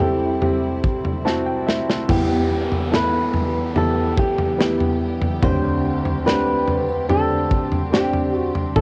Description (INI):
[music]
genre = pop ballad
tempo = 72 BPM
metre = 4/4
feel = straight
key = E minor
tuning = A4 = 439 Hz
[part]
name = flamenco guitar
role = melody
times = 0.0-8.8 s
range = G4 to C5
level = -26 LUFS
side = equal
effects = cassette tape
[part]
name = warm grand piano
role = accompaniment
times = 0.0-8.8 s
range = A1 to A5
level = -24 LUFS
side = equal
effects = cassette tape
[part]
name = warm studio string section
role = sustained chords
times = 0.0-8.8 s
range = C3 to A4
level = -34 LUFS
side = equal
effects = cassette tape
[part]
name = fingerpicked steel-string acoustic guitar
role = arpeggios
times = 0.0-8.8 s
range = E2 to A4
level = -34 LUFS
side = equal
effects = none
[part]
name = modern studio drum kit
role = drums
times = 0.0-8.8 s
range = crash cymbal, kick drum, snare drum, toms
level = -25 LUFS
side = equal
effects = vintage 12-bit sampler grit, cassette tape
[part]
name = downlifter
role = sound effects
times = 2.1-8.8 s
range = none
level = -35 LUFS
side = equal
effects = none
[sound]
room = light reverb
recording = home recording on cassette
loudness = -20 LUFS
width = mono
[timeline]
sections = 0.0-2.1 A section; 2.1-8.8 B section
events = grand piano fill 0.8-2.1; drum fill 1.3-2.1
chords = 0.0 C; 2.1 Em; 5.4 D7sus4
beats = 0.42 1.26 | 2.09 2.92 3.76 4.59 | 5.42 6.26 7.09 7.92 | 8.76